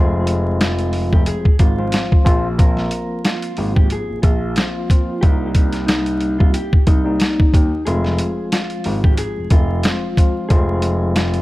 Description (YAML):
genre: hip hop, boom-bap hip-hop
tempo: 91 BPM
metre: 4/4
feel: swing 55% on 16ths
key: F minor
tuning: A4 = 440 Hz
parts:
  - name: mellow electric guitar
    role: melody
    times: 0.0-11.4 s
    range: Eb4 to Bb4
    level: -25 LUFS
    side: equal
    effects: high-pass filter, low-pass filter, digital delay
  - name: tine electric piano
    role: accompaniment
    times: 0.0-11.4 s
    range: F3 to F4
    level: -24 LUFS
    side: left 1 dB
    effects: medium tremolo, high-pass filter, low-pass filter
  - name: dark baby grand piano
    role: bass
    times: 0.0-11.4 s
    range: F1 to Eb2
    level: -21 LUFS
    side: equal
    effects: none
  - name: boom bap sampler-style drum kit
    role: drums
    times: 0.3-11.4 s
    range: hi-hat, kick drum, snare drum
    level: -15 LUFS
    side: equal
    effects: none
room: little or no reverb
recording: vinyl crackle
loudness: -14 LUFS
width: side -18 dB against mid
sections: 0.0-11.4 A section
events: break 7.9-8.5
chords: 0.0 Fm; 2.3 Bbsus2; 5.2 Cm7; 7.9 Fm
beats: 0.61 1.27 1.93 | 2.59 3.25 3.91 4.57 | 5.23 5.89 6.55 7.21 | 7.87 8.53 9.19 9.84 | 10.50 11.16